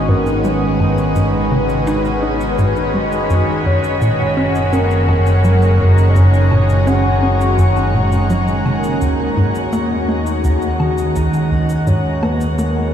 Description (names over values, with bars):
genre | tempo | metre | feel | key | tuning
ambient, sequencer-driven space music | 84 BPM | 4/4 | straight | unclear | A4 = 440 Hz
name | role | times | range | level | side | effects
soft octave-layered synth lead | melody | 0.0-12.9 s | Bb4 to Gb5 | -22 LUFS | left 1 dB | chorus, tremolo, cassette tape, ping-pong delay
phased analog pad | sustained chords | 0.0-12.9 s | Eb3 to Bb5 | -19 LUFS | equal | phaser, chorus
analog drone | bass | 0.0-12.9 s | Gb1 to Eb2 | -17 LUFS | equal | chorus
pulsing gated texture | texture | 0.0-12.9 s | Gb4 to Bb5 | -34 LUFS | right 1 dB | none
tight sequencer bass | riff | 0.1-12.7 s | Eb2 to Eb4 | -18 LUFS | equal | ping-pong delay
cabasa and woodblock | percussion | 0.3-12.7 s | none | -39 LUFS | left 1 dB | ping-pong delay
room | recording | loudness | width
wet shimmer reverb, RT60 8.3 s | played on a big sound system in a bare room, large studio reverb | -13 LUFS | side -9 dB against mid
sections
0.0-12.9 A section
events
none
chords
0.0 Abm; 3.3 Gb; 9.0 Ebm